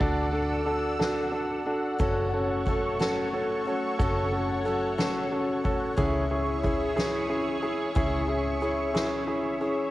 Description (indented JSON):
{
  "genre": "six-eight pop ballad",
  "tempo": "60 BPM (dotted quarters)",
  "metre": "6/8",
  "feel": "straight",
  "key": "F# minor",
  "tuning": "A4 = 440 Hz",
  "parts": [
    { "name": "warm concert grand piano", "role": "accompaniment", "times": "0.0-9.9 s", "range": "C#4 to A4", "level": "-28 LUFS", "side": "equal", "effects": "none" },
    { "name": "lush unison pad", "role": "sustained chords", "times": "0.0-9.9 s", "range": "G#4 to E6", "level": "-33 LUFS", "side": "equal", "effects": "chorus, phaser" },
    { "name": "vintage muted fingered electric bass", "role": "bass", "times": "0.0-9.9 s", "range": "F#1 to D2", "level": "-34 LUFS", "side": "equal", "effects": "none" },
    { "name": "soft-mallet drum kit", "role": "drums", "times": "0.0-9.8 s", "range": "kick drum, ride cymbal, snare drum", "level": "-33 LUFS", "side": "equal", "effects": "cassette tape" },
    { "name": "picked steel-string acoustic guitar", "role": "arpeggios", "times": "2.0-9.9 s", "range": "F#2 to A4", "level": "-33 LUFS", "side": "left 4 dB", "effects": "tape echo" }
  ],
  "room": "light reverb",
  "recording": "home recording on cassette",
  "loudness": "-25 LUFS",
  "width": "side -16 dB against mid",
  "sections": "0.0-9.9 A section",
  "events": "none",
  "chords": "0.0 D; 2.0 F#m; 6.0 C#m"
}